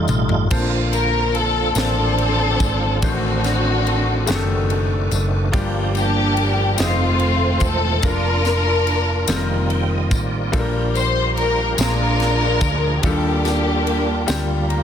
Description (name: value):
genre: slow gospel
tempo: 48 BPM (dotted quarters)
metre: 6/8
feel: straight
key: Bb major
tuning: A4 = 440 Hz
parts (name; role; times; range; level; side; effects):
- clear baby grand piano; accompaniment; 0.0-14.8 s; G2 to Bb5; -25 LUFS; left 3 dB; none
- tonewheel organ; sustained chords; 0.0-14.8 s; D3 to G5; -27 LUFS; right 4 dB; slow rotary speaker, overdrive, chorus vibrato
- hollow-body short-scale fingered electric bass; bass; 0.0-14.8 s; E1 to Eb2; -21 LUFS; equal; none
- crisp fusion drum kit; drums; 0.1-14.8 s; crash cymbal, kick drum, ride cymbal, snare drum, toms; -25 LUFS; equal; none
- tambourine; percussion; 0.1-14.7 s; none; -30 LUFS; left 9 dB; none
- warm studio string section; melody; 0.9-14.7 s; A3 to C5; -20 LUFS; left 2 dB; tape echo
room: studio reverb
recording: dense, heavily limited modern master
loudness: -16 LUFS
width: side -9 dB against mid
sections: 0.5-14.8 A section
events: drum fill 0.0-0.5; tonewheel organ fill 9.3-10.5; grand piano fill 14.3-14.8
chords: 0.0 F9; 0.5 Bbmaj9; 3.0 D7b9/A; 5.5 Gm7; 6.8 F7; 8.0 Bb/F; 9.3 F9sus4; 10.5 Bb6; 11.8 Bb7; 13.0 Ebmaj9#11